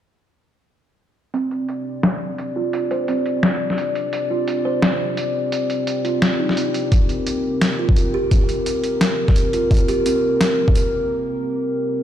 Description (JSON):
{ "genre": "half-time drum and bass", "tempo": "172 BPM", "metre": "4/4", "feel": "swing 56% on 16ths, half-time", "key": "unclear", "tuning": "A4 = 440 Hz", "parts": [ { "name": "dark analog pad", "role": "sustained chords", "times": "1.3-12.0 s", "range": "C4 to D5", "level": "-22 LUFS", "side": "left 2 dB", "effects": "chorus, vintage 12-bit sampler grit, sidechain pumping" }, { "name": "kalimba", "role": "arpeggios", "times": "1.3-10.7 s", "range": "C4 to C5", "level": "-24 LUFS", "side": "right 4 dB", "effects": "low-pass filter, dub echo" }, { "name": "boom bap sampler-style drum kit", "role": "drums", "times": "1.3-10.8 s", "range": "hi-hat, snare drum", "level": "-22 LUFS", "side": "left 1 dB", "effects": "overdrive, low-pass filter on hats, low-pass filter on snare" }, { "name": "electronic kick drum", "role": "drums", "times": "6.9-10.7 s", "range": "none", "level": "-16 LUFS", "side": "equal", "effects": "overdrive" } ], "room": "moderate lush hall reverb, RT60 2.2 s", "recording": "played on a big sound system in a bare room, stone room reverb", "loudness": "-17 LUFS", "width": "side -10 dB against mid", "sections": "1.3-12.0 A section", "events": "filter sweep on drum 1.3-12.0; filter sweep on kalimba 1.3-12.0; break 11.1-12.0", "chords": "1.3 C5" }